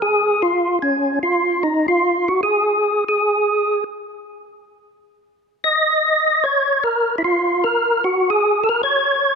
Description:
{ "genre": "jazz", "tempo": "150 BPM", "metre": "4/4", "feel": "swing 65% on 8ths", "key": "unclear", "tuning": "A4 = 441 Hz", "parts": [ { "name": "percussive tonewheel organ", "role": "solo", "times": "0.0-9.4 s", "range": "Db4 to Eb5", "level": "-16 LUFS", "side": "equal", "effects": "slow rotary speaker, overdrive, chorus vibrato" } ], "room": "moderate lush hall reverb, RT60 2.6 s", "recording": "rough home demo mix", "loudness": "-15 LUFS", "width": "side -5 dB against mid", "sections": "0.0-9.4 A section", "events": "none", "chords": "none" }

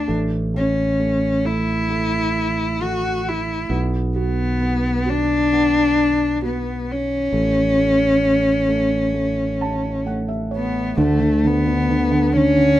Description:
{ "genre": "acoustic folk-pop ballad", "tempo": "66 BPM", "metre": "4/4", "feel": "straight", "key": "unclear", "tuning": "A4 = 441 Hz", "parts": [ { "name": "dark cello", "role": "melody", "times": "0.0-12.8 s", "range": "A3 to F#4", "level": "-19 LUFS", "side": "left 1 dB", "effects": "none" }, { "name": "felt-muted upright piano", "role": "accompaniment", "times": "0.0-12.8 s", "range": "D3 to A5", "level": "-24 LUFS", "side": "right 2 dB", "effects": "none" }, { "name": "fingered electric bass", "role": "bass", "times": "0.0-12.8 s", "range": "A1 to D2", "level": "-24 LUFS", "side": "right 1 dB", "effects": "none" } ], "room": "light reverb", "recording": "band playing live in one room", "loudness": "-17 LUFS", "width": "side -13 dB against mid", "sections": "0.0-11.0 A section; 11.0-12.8 B section", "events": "none", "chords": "0.1 A5; 3.7 Bm; 7.3 A; 11.0 D5" }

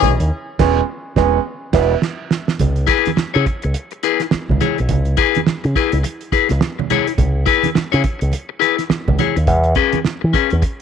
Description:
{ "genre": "funk", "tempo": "105 BPM", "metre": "4/4", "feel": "swing 60% on 16ths", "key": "C# minor", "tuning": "A4 = 435 Hz", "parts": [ { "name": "fingered electric bass with an envelope filter", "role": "bass", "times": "0.0-10.6 s", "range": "E1 to E3", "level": "-17 LUFS", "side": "equal", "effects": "tube saturation" }, { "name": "cloth-damped thuddy drum kit", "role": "drums", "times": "0.0-10.8 s", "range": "crash cymbal, hi-hat, kick drum, snare drum", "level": "-20 LUFS", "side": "right 3 dB", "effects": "none" }, { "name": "congas", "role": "percussion", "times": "0.0-10.5 s", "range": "none", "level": "-24 LUFS", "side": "right 9 dB", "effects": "none" }, { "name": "warm upright piano", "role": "stabs", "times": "0.6-1.9 s", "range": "G#3 to E4", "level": "-18 LUFS", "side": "right 15 dB", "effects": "none" }, { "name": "electric guitar at the edge of break-up", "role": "accompaniment", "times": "2.9-10.7 s", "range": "C#4 to C#5", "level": "-18 LUFS", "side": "left 13 dB", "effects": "none" } ], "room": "light reverb, studio ambience", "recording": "1960s-style stereo with parts hard left and right", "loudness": "-14 LUFS", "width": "side -8 dB against mid", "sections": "0.0-2.6 A section; 2.6-10.8 B section", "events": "break 0.0-2.6; band accent 0.3-2.6; drum fill 1.4-2.6", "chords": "0.3 E6; 2.6 C#m7; 9.5 E6" }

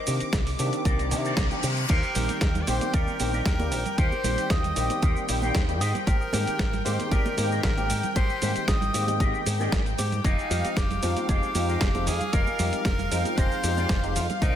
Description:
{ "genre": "nu-disco, nu disco", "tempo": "115 BPM", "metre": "4/4", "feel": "straight", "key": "unclear", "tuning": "A4 = 440 Hz", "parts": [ { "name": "lush unison pad", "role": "sustained chords", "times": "0.0-14.6 s", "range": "F5 to D6", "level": "-34 LUFS", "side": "equal", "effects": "chorus, sidechain pumping" }, { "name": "electric guitar with an envelope filter", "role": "riff", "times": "0.0-14.6 s", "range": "Eb4 to Eb5", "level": "-35 LUFS", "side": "left 2 dB", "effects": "analog chorus, vintage 12-bit sampler grit, analog delay" }, { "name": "barky tine electric piano", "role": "accompaniment", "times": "0.1-14.2 s", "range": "Eb3 to G5", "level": "-32 LUFS", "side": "equal", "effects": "overdrive, ensemble chorus, sidechain pumping, analog delay" }, { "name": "fingered electric bass with an envelope filter", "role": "bass", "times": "0.1-14.5 s", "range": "F1 to C3", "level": "-28 LUFS", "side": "equal", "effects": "none" }, { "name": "dusty soul sampler-style drum kit", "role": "drums", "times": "0.1-14.5 s", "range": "crash cymbal, hi-hat, shaker, snare drum", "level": "-32 LUFS", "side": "right 1 dB", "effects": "none" }, { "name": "electronic kick drum", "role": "drums", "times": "0.3-14.5 s", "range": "none", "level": "-25 LUFS", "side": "equal", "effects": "none" }, { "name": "reverse cymbal", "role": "sound effects", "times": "1.0-1.9 s", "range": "none", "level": "-35 LUFS", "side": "left 3 dB", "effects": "none" }, { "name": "edgy tenor saxophone", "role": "melody", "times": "1.9-14.6 s", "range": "Eb4 to Eb5", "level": "-32 LUFS", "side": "left 1 dB", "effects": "ping-pong delay" }, { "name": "congas", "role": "percussion", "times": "2.2-14.4 s", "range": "none", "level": "-36 LUFS", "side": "right 5 dB", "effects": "none" } ], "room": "moderate lush hall reverb, RT60 1.9 s", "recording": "dreamy mix soaked in reverb", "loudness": "-23 LUFS", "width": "side -10 dB against mid", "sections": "0.0-14.6 A section", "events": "reverse cymbal 1.0-1.9", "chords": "0.0 Cm9; 1.9 Eb6; 5.8 Abmaj9; 10.2 Fm9" }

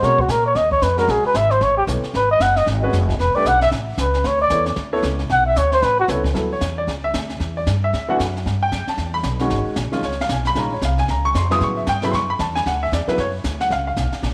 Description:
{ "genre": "jazz, small-group swing and bop", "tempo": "228 BPM", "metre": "4/4", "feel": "swing 60% on 8ths", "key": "D major from 6.4 s", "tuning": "A4 = 440 Hz", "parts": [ { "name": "trumpet with bucket mute", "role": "melody", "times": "0.0-6.1 s", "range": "F#4 to F#5", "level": "-19 LUFS", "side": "equal", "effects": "none" }, { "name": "warm baby grand piano", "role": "accompaniment", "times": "0.0-14.1 s", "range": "C#3 to Eb6", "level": "-24 LUFS", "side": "equal", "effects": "none" }, { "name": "upright bass", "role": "bass", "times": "0.0-14.3 s", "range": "E1 to B2", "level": "-25 LUFS", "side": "equal", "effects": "none" }, { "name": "jazz brush drum kit", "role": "drums", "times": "0.0-14.3 s", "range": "brushed snare drum, hi-hat, kick drum, snare drum", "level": "-31 LUFS", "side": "equal", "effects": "none" } ], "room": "moderate echo chamber reverb, RT60 1.5 s, small room ambience", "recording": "none", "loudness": "-19 LUFS", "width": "mono", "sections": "0.0-6.4 A section; 6.4-14.3 A section", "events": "muted trumpet solo 0.0-6.4", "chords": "0.0 Bmaj7; 1.1 G#m11; 1.6 Aadd9; 2.1 G#7(no3); 3.2 Em7; 3.7 A; 4.2 D5; 5.3 Bm; 5.8 Aadd9; 6.4 Dmaj13; 7.4 Em7; 7.9 Dadd9; 8.5 G69; 9.5 G#sus2; 10.0 C#7; 10.6 F#maj9 (rootless); 11.6 A13; 12.7 Dmaj13; 13.7 C#7" }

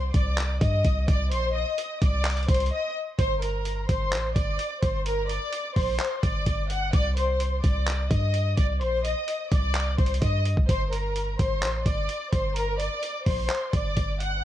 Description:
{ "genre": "hip hop, trap", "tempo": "128 BPM", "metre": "4/4", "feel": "half-time", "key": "G harmonic minor", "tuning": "A4 = 443 Hz", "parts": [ { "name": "warm symphonic violin section", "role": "melody", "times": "0.0-14.4 s", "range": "Bb4 to F#6", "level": "-28 LUFS", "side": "left 1 dB", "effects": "low-pass filter, plate reverb" }, { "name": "warm 808-style bass", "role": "bass", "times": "0.0-14.4 s", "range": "G1 to G2", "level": "-26 LUFS", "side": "equal", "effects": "none" }, { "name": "boom bap sampler-style drum kit", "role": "drums", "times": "0.1-14.3 s", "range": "handclaps, hi-hat, kick drum", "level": "-27 LUFS", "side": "equal", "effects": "none" } ], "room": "light reverb", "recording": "worn, warbling old tape, cassette tape, warbly pitch drift", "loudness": "-23 LUFS", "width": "side -12 dB against mid", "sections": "0.0-3.2 A section; 3.2-14.4 B section", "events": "break 2.7-3.2", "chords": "0.0 Cm; 3.2 Gm; 6.9 Cm; 10.7 Gm" }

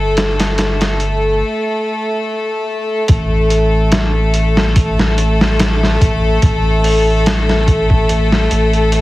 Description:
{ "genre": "trip hop", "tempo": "72 BPM", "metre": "4/4", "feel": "swing 54% on 16ths", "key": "unclear", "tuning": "A4 = 436 Hz", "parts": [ { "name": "bright chamber violin section", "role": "sustained chords", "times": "0.0-9.0 s", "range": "A3 to A4", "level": "-16 LUFS", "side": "left 1 dB", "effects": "vintage 12-bit sampler grit" }, { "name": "warm sub bass", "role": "bass", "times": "0.0-9.0 s", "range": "G1 to A1", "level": "-15 LUFS", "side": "equal", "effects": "none" }, { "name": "trip hop sampler-style drum kit", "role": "drums", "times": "0.2-9.0 s", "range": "hi-hat, kick drum, snare drum", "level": "-15 LUFS", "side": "equal", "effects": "high-pass filter on hats, high-pass filter on snare, high-pass filter on kick, high-pass filter on room" } ], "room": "light reverb", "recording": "heavily compressed radio sound, vinyl crackle", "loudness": "-12 LUFS", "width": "side -17 dB against mid", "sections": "0.0-3.1 A section; 3.1-9.0 B section", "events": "break 1.4-3.1", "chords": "0.0 Gsus2; 3.1 N.C." }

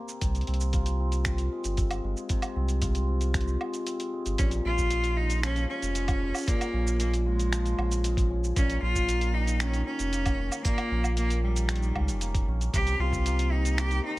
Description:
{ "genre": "folktronica", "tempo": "115 BPM", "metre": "4/4", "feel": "straight", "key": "Bb dorian", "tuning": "A4 = 440 Hz", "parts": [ { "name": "cimbalom", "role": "arpeggios", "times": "0.0-14.2 s", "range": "Bb2 to G4", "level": "-34 LUFS", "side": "left 2 dB", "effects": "tape echo" }, { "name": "lo-fi sampler-style drum kit", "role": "drums", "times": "0.1-14.0 s", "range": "finger snaps, hi-hat, shaker, woodblock", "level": "-34 LUFS", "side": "right 1 dB", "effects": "studio reverb" }, { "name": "warm sub bass", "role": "bass", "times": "0.2-14.0 s", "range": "F1 to Db2", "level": "-27 LUFS", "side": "equal", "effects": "none" }, { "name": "electronic kick drum", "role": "drums", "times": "0.2-13.2 s", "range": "none", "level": "-29 LUFS", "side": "equal", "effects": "studio reverb" }, { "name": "bright cello", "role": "melody", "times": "4.4-14.2 s", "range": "G3 to G4", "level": "-31 LUFS", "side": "equal", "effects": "none" } ], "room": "digital ambience", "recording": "none", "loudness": "-25 LUFS", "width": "side -18 dB against mid", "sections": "0.0-4.4 A section; 4.4-14.2 B section", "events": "filter sweep on hammered dulcimer 0.0-4.4; break 3.9-4.4", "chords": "0.2 Fm; 4.4 Bbm7; 8.6 Eb7; 12.7 Cm7" }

